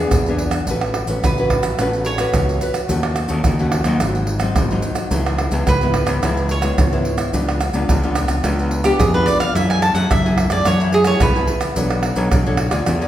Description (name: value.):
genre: samba and choro.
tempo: 108 BPM.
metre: 4/4.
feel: straight.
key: A major.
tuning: A4 = 440 Hz.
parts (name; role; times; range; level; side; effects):
nylon-string guitar; accompaniment; 0.0-13.1 s; G#2 to D5; -23 LUFS; left 2 dB; none.
growling fingered electric bass; bass; 0.0-13.1 s; G#1 to F#2; -20 LUFS; equal; overdrive.
maracas, surdo, pandeiro and tamborim; percussion; 0.1-13.1 s; none; -20 LUFS; right 1 dB; none.
cavaquinho; melody; 1.2-11.7 s; E4 to A5; -20 LUFS; right 2 dB; none.
room: wet recital hall reverb, RT60 1.5 s.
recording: recorded in a church or concert hall.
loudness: -15 LUFS.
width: side -12 dB against mid.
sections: 0.7-13.1 A section.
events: cavaquinho solo 0.7-13.1.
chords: 0.0 E7; 0.7 A69; 2.9 D#m7b5; 4.0 G#7; 5.1 C#m7; 7.3 C#7b9; 9.6 F#m9; 11.8 Bm9.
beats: 0.13 | 0.69 1.24 1.79 2.35 | 2.90 3.46 4.01 4.57 | 5.12 5.67 6.23 6.78 | 7.34 7.89 8.45 9.00 | 9.55 10.11 10.66 11.21 | 11.77 12.32 12.87.